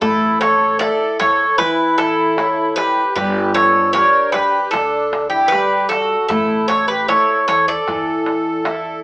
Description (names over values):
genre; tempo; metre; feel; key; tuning
greek folk, Greek bouzouki band; 76 BPM; 4/4; straight; unclear; A4 = 440 Hz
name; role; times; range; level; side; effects
Greek bouzouki; melody; 0.0-9.0 s; G4 to D5; -15 LUFS; equal; none
accordion; second line; 0.0-9.0 s; D4 to Bb4; -21 LUFS; equal; light tremolo tuning
picked old ladder-braced acoustic guitar; accompaniment; 0.0-9.0 s; D3 to E5; -22 LUFS; left 1 dB; none
upright bass; bass; 0.0-9.0 s; G1 to E2; -28 LUFS; equal; none
darbuka; percussion; 0.0-8.9 s; none; -26 LUFS; equal; none
room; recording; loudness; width
wet studio reverb, RT60 0.5 s; band playing live in one room, AM radio sound; -13 LUFS; side -22 dB against mid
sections
0.0-9.0 A section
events
none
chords
0.0 A; 3.2 G5; 6.3 A